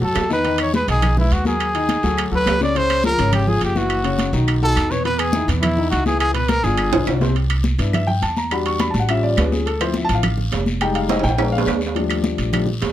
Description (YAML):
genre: Afro-Cuban jazz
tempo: 208 BPM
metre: 4/4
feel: straight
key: C major from 7.4 s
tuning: A4 = 441 Hz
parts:
  - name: clear trumpet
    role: melody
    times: 0.0-7.1 s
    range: E4 to D5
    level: -21 LUFS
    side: equal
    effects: none
  - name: dark grand piano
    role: accompaniment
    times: 0.0-12.7 s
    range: B2 to Db6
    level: -22 LUFS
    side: left 3 dB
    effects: none
  - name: upright bass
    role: bass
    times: 0.0-12.9 s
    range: F1 to G2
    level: -21 LUFS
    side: equal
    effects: none
  - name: congas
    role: percussion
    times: 0.0-12.9 s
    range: none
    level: -25 LUFS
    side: left 1 dB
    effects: none
  - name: claves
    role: percussion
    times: 0.2-12.7 s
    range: none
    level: -29 LUFS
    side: left 5 dB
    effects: none
  - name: guiro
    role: percussion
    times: 0.2-12.9 s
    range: none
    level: -35 LUFS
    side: left 4 dB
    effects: none
  - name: timbales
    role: percussion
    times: 0.2-12.9 s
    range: none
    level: -25 LUFS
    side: right 7 dB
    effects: none
room: moderate studio ambience, RT60 0.5 s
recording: close, detailed microphones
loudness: -16 LUFS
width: side -12 dB against mid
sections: 0.0-7.4 A section; 7.4-12.9 B section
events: drum fill 6.9-7.4, 11.1-12.0; grand piano solo 7.4-12.9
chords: 0.5 Emaj9; 1.6 Ebm; 2.2 D6; 2.8 Dbmaj7; 3.9 Gb5; 4.5 B7; 5.1 Emaj7; 6.2 Dbm7; 6.8 G7b9; 7.4 Cmaj9; 8.5 Em7; 9.1 A7b13; 9.7 Dm7; 10.8 Fm9; 11.4 Bb7b9; 12.0 Ebmaj9#11